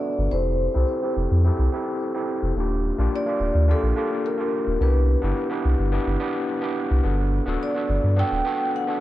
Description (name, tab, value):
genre	sunset chillout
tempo	107 BPM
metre	4/4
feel	straight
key	G major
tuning	A4 = 435 Hz
part	vibraphone with soft mallets	melody	0.0-9.0 s	A4 to G5	-28 LUFS	equal	ping-pong delay
part	overdriven tine electric piano	accompaniment	0.0-9.0 s	Bb3 to A4	-26 LUFS	equal	auto-pan, low-pass filter, digital delay
part	warm sub bass	bass	0.2-8.4 s	D1 to G2	-21 LUFS	equal	none
room	light reverb, small room ambience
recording	dark, warm production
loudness	-20 LUFS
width	side -14 dB against mid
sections	0.0-9.0 A section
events	filter sweep on tine electric piano 0.0-9.0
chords	0.3 Fmaj9; 2.6 Ebmaj9; 4.8 Cmaj9; 7.1 Gmaj9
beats	| 0.32 0.88 1.45 2.01 | 2.57 3.13 3.69 4.25 | 4.81 5.37 5.93 6.49 | 7.05 7.61 8.17 8.73